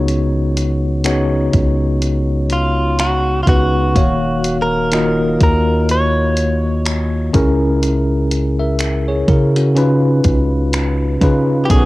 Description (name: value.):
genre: contemporary R&B.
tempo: 62 BPM.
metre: 4/4.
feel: swing 58% on 16ths.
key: unclear.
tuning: A4 = 440 Hz.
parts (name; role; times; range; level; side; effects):
bell-like tine electric piano; accompaniment; 0.0-11.9 s; B2 to F5; -16 LUFS; left 1 dB; medium stereo tremolo, cassette tape.
long sustained 808-style bass; bass; 0.0-11.9 s; Eb1 to Db3; -18 LUFS; equal; none.
crisp 8-bit digital drum machine; drums; 0.1-11.9 s; finger snaps, hi-hat, kick drum; -17 LUFS; equal; cassette tape.
direct-recorded clean electric guitar; melody; 2.5-11.9 s; F4 to Db5; -18 LUFS; right 1 dB; cassette tape.
dark studio string section; sustained chords; 11.7-11.9 s; D#3 to A#4; -22 LUFS; equal; cassette tape.
room: light reverb.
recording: home recording on cassette.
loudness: -13 LUFS.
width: side -18 dB against mid.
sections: 0.0-11.7 A section.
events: none.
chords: 0.0 Db7sus4; 4.0 Ebm7; 7.3 Dbm6; 9.8 Db7.